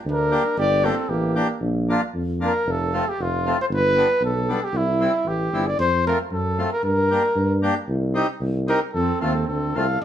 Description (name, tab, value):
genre	alpine folk, alpine dance band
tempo	114 BPM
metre	2/4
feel	straight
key	unclear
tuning	A4 = 440 Hz
part	warm trumpet	melody	0.1-10.0 s	E4 to F5	-22 LUFS	equal	plate reverb
part	mellow trumpet	second line	0.1-1.6, 9.0-10.0 s	Bb3 to A4	-29 LUFS	right 4 dB	none
part	warm tuba	bass	0.1-10.0 s	F1 to G2	-24 LUFS	equal	none
part	accordion	accompaniment	0.3-9.9 s	G3 to G4	-25 LUFS	left 2 dB	none
room	wet studio reverb, RT60 0.6 s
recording	heard from further back in the room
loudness	-19 LUFS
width	side -10 dB against mid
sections	0.0-1.6 A section; 1.6-10.0 B section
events	none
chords	0.0 Gm; 1.6 Bb; 2.7 F; 3.7 G; 4.7 C; 5.8 F; 6.8 Gm; 7.9 Cm; 8.9 F